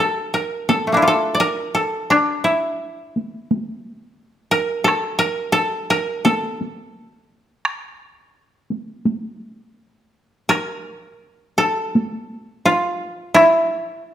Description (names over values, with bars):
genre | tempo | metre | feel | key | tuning
japanese traditional, Japanese chamber music | 85 BPM | 4/4 | rubato | A miyako bushi | A4 = 442 Hz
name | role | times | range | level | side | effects
koto | melody | 0.0-14.1 s | A3 to D5 | -17 LUFS | equal | none
taiko ensemble | percussion | 0.7-13.5 s | none | -22 LUFS | right 1 dB | none
room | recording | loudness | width
moderate recital hall reverb, RT60 1.4 s | none | -17 LUFS | side -10 dB against mid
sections
0.0-10.5 A section; 10.5-14.1 B section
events
none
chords
none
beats
0.69 1.40 | 2.11 2.81 3.50 4.18 | 4.87 5.56 6.25 6.93 | 7.64 8.34 9.05 9.77 | 10.51 11.23 11.95 12.66 | 13.37 14.06